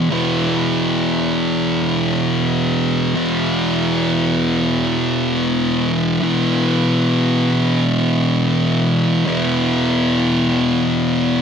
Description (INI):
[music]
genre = metal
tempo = free time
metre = none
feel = none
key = unclear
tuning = A4 = 441 Hz
[part]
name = thick fuzz guitar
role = solo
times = 0.0-11.4 s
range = E2 to E3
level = -15 LUFS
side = equal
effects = distortion
[sound]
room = light reverb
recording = none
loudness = -15 LUFS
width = side -7 dB against mid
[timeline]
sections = 0.0-11.4 A section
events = none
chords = 0.0 E5